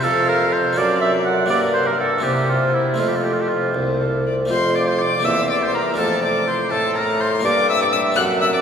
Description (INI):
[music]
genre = classical, baroque-style sonata movement with continuo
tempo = 82 BPM (dotted quarters)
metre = 6/8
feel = straight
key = F major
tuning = A4 = 439 Hz
[part]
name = warm violin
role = melody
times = 0.0-8.6 s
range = A4 to F#6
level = -23 LUFS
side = left 4 dB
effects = none
[part]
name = warm oboe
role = second line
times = 0.0-8.6 s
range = E4 to F#5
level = -21 LUFS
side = right 2 dB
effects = none
[part]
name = harpsichord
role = accompaniment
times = 0.0-8.6 s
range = C2 to A4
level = -24 LUFS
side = equal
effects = none
[part]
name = mellow bassoon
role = bass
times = 0.0-8.6 s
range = C2 to C3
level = -21 LUFS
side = equal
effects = none
[sound]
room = wet cathedral reverb, RT60 5.2 s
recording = recorded in a church or concert hall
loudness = -16 LUFS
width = side -7 dB against mid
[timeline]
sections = 0.0-4.5 A section; 4.5-8.6 B section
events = none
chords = 0.0 F; 0.8 D7/F#; 1.5 Gm; 2.2 C7; 3.0 F; 5.2 C7/E; 6.0 F; 7.4 Gm